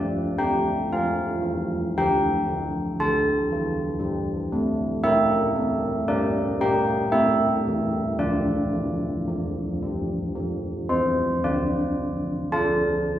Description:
classical, tune for church bells; 57 BPM; 3/4; straight; D minor; A4 = 437 Hz
old church bells; solo; 0.0-13.2 s; D3 to A5; -22 LUFS; equal
wet recital hall reverb, RT60 1.6 s; heard from further back in the room; -22 LUFS; side -12 dB against mid
0.0-11.4 A section; 11.4-13.2 B section
0.0 Dm; 2.0 A5/D; 5.0 A5; 6.1 Gm; 7.1 A5; 8.2 Dm

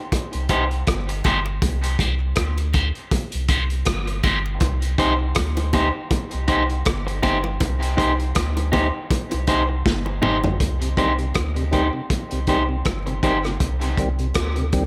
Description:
dub reggae; 80 BPM; 4/4; swing 57% on 16ths; C minor; A4 = 440 Hz
crunchy breakbeat drum kit; drums; 0.1-14.9 s; hi-hat, kick drum, rim click, snare drum, toms; -26 LUFS; equal
bongos; percussion; 0.1-10.6 s; -33 LUFS; equal; high-pass filter on perc, dub echo
warm sub bass; bass; 0.3-14.9 s; G1 to D2; -26 LUFS; equal
electric guitar at the edge of break-up; accompaniment; 0.5-13.4 s; Eb4 to C5; -26 LUFS; equal; spring reverb, high-pass filter, dub echo
tonewheel organ; accompaniment; 10.8-14.8 s; C3 to C4; -30 LUFS; equal; high-pass filter, dub echo
light reverb, small room ambience; faint mains hum; -22 LUFS; mono
0.0-10.6 A section; 10.6-14.9 B section
break 0.0-10.6; filter sweep 0.0-4.6; drum fill 9.9-10.6; part muted 10.6-14.9
0.0 Cm

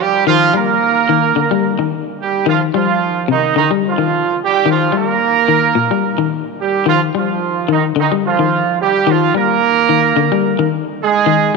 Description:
afrobeat; 109 BPM; 4/4; swing 55% on 16ths; A4 = 441 Hz
warm horn section; melody; 0.0-11.5 s; Eb3 to Bb4; -14 LUFS; right 8 dB
electric guitar at the edge of break-up; arpeggios; 0.3-11.6 s; Bb2 to G3; -17 LUFS; left 12 dB; spring reverb
moderate plate reverb, RT60 3.2 s; 1960s-style stereo with parts hard left and right; -12 LUFS; side -3 dB against mid
0.0-11.6 A section
0.3 Ebadd9; 1.4 Ebmaj7; 2.5 Fsus2; 3.6 Ebmaj9; 4.7 Ebadd9; 5.8 Eb; 6.9 Fsus2; 8.0 Ebmaj9; 9.1 Ebadd9; 10.2 Ebmaj7

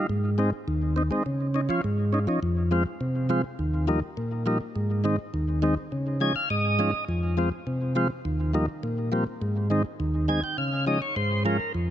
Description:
dancehall; 103 BPM; 4/4; straight; A4 = 436 Hz
tonewheel organ; solo; 0.0-11.9 s; Eb2 to Ab5; -24 LUFS; equal; slow rotary speaker, tape echo
light reverb; -24 LUFS; side -11 dB against mid
0.0-2.4 A section; 2.4-11.9 B section
tonewheel organ fill 5.9-7.1, 10.0-11.7
0.1 Ab; 1.3 Dbadd9; 2.4 Fm; 3.6 Ebadd9; 4.8 Ab; 5.9 Dbadd9; 7.1 Fm; 8.3 Ebadd9; 9.4 Ab; 10.6 Dbadd9

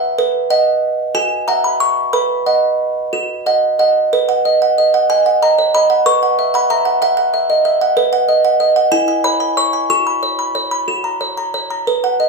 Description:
classical, lullaby for music box; 62 BPM (dotted quarters); 6/8; straight; B major; A4 = 440 Hz
music box; solo; 0.0-12.3 s; E4 to C#6; -12 LUFS; right 2 dB
moderate studio reverb, RT60 0.5 s; studio reverb; -12 LUFS; side -3 dB against mid
0.0-4.1 A section; 4.1-12.3 B section
0.2 B; 1.1 F#9; 2.1 B; 6.1 Bsus4; 8.0 B; 8.9 C#m/E; 9.9 F#sus4; 10.9 F#

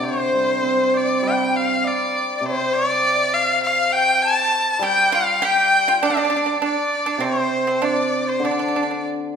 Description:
chinese traditional, Chinese chamber ensemble; 100 BPM; 4/4; rubato; D yu mode; A4 = 440 Hz
bright erhu; melody; 0.0-9.1 s; C5 to A5; -20 LUFS; equal
bright dizi; second line; 0.0-9.1 s; C5 to D6; -22 LUFS; left 3 dB
hammered dulcimer; accompaniment; 0.0-9.4 s; C3 to C4; -24 LUFS; right 2 dB
pipa; second line; 4.8-9.0 s; C4 to G4; -24 LUFS; right 6 dB
wet recital hall reverb, RT60 1.4 s; minimal, uncompressed stereo recording; -17 LUFS; side -7 dB against mid
0.0-9.4 A section

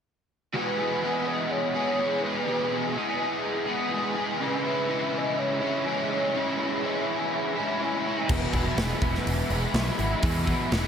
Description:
rock, shoegaze and dream pop; 124 BPM; 4/4; straight; E major; A4 = 440 Hz
mellow horn-like synth lead; melody; 0.5-7.0 s; B4 to D#5; -30 LUFS; right 1 dB; chorus, diffuse ambient delay
overdriven electric guitar; riff; 0.5-10.9 s; E2 to G#4; -26 LUFS; equal; ensemble chorus
growling picked electric bass; bass; 8.3-10.9 s; E1 to E2; -28 LUFS; equal; overdrive
big rock drum kit; drums; 8.3-10.8 s; crash cymbal, hi-hat, kick drum, snare drum; -28 LUFS; equal
wet plate reverb, RT60 1.6 s, small room ambience; dreamy mix soaked in reverb; -24 LUFS; side -7 dB against mid
0.5-10.9 A section
0.5 E; 4.4 C#m; 8.3 E

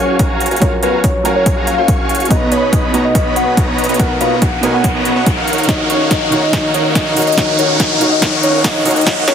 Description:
future bass; 142 BPM; 4/4; half-time; A4 = 440 Hz
soft octave-layered synth lead; melody; 0.0-9.3 s; B4 to F#5; -18 LUFS; left 2 dB; chorus, phaser, sidechain pumping, ping-pong delay
felt-muted upright piano; accompaniment; 0.0-9.3 s; B2 to E#5; -19 LUFS; right 1 dB; sidechain pumping
dense compressed supersaw; riff; 0.0-9.3 s; B3 to C#6; -18 LUFS; right 1 dB; sidechain pumping, low-pass filter
fat analog bass; bass; 0.0-9.3 s; D#1 to D#2; -27 LUFS; left 1 dB
riser; sound effects; 0.8-9.3 s; -21 LUFS; equal
big-room dance drum kit; drums; 0.2-9.3 s; hi-hat, snare drum; -20 LUFS; right 1 dB; overdrive, high-pass filter on snare, high-pass filter on hats, high-pass filter on room
electronic kick drum; drums; 0.2-9.2 s; -16 LUFS; equal; overdrive
moderate digital room reverb, RT60 1.1 s; heavily compressed radio sound, multiband compression, high-pass filter; -11 LUFS; side -8 dB against mid
0.0-9.3 A section
build-up 0.0-9.3; filter sweep 0.0-9.3; riser 0.8-9.3; drum fill 5.7-9.3
0.0 F#maj7; 2.3 Bmaj7; 5.5 D#m7

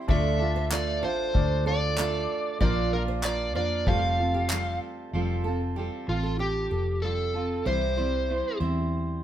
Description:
acoustic pop; 95 BPM; 4/4; straight; F major; A4 = 440 Hz
bright upright piano; accompaniment; 0.0-5.2 s; G3 to D5; -36 LUFS; left 3 dB
fingerpicked steel-string acoustic guitar; accompaniment; 0.0-9.2 s; Bb2 to C5; -31 LUFS; right 3 dB
overdriven slide guitar; melody; 0.1-8.6 s; F4 to F5; -29 LUFS; equal
nylon-string guitar; arpeggios; 0.1-9.1 s; G4 to E5; -37 LUFS; right 5 dB
vintage muted fingered electric bass; bass; 0.1-9.2 s; F1 to F2; -29 LUFS; equal
unplugged drum kit; drums; 0.1-4.6 s; handclaps, kick drum; -27 LUFS; equal
light reverb; band playing live in one room; -24 LUFS; side -11 dB against mid
0.0-5.1 A section; 5.1-9.2 B section
0.1 Dm; 2.6 Bb; 3.9 Fadd9; 7.7 C

